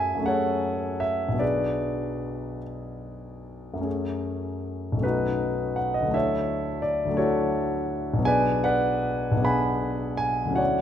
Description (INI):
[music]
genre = classical, impressionist solo piano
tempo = 48-58 BPM (dotted quarters)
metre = 6/8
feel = rubato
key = unclear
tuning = A4 = 440 Hz
[part]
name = warm concert grand piano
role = solo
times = 0.0-10.8 s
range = B1 to B5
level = -24 LUFS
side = equal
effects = none
[sound]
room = moderate concert hall reverb, RT60 2.2 s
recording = minimal, uncompressed stereo recording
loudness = -23 LUFS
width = side -9 dB against mid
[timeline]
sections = 0.0-10.8 A section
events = none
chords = 0.0 F#m9; 1.4 Bm6; 3.9 F#madd9; 5.0 B9; 6.1 Dmaj9; 8.3 Bm6